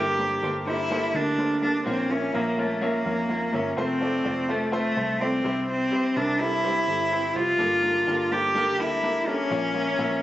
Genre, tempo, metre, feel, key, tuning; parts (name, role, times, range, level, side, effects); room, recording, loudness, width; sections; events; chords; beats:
piano-driven pop; 126 BPM; 4/4; swing 56% on 16ths; A4 = 440 Hz
warm cello; melody; 0.0-10.2 s; A3 to G4; -24 LUFS; equal
clear concert grand piano; accompaniment; 0.0-10.2 s; G2 to E5; -28 LUFS; equal
vintage muted fingered electric bass; bass; 0.0-10.2 s; F1 to F2; -37 LUFS; equal
light reverb, studio ambience; recorded on a phone in the room, nothing above 7.9 kHz; -22 LUFS; side -14 dB against mid
0.0-10.2 A section
0.0 Gmadd9; 1.9 Bbm; 3.8 F; 5.4 C; 7.6 Gmadd9; 9.5 Bbm
0.43 0.91 1.38 | 1.86 2.34 2.82 3.29 | 3.77 4.25 4.73 5.21 | 5.68 6.16 6.64 7.12 | 7.60 8.07 8.55 9.03 | 9.51 9.99